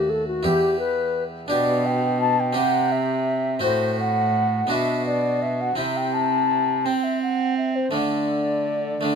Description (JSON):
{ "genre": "classical, baroque-style sonata movement with continuo", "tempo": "56 BPM (dotted quarters)", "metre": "6/8", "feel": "straight", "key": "unclear", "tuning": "A4 = 440 Hz", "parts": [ { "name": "mellow baroque flute", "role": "melody", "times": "0.0-9.2 s", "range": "F#4 to A5", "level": "-23 LUFS", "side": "left 2 dB", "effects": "none" }, { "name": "harpsichord", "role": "accompaniment", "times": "0.0-9.2 s", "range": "D#2 to G4", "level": "-26 LUFS", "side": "right 2 dB", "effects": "none" }, { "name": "rich cello", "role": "bass", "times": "0.0-9.2 s", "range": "D#2 to C4", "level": "-25 LUFS", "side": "right 3 dB", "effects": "none" } ], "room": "light reverb", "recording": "minimal, uncompressed stereo recording", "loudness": "-20 LUFS", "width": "side -6 dB against mid", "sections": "0.0-9.2 A section", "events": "none", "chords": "0.4 Em; 1.5 G/B; 2.6 C; 3.6 F#dim/A; 4.7 Bm; 5.8 C; 7.9 D5", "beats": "0.45 | 1.50 2.55 | 3.63 4.71 | 5.78 6.86 | 7.94 9.04" }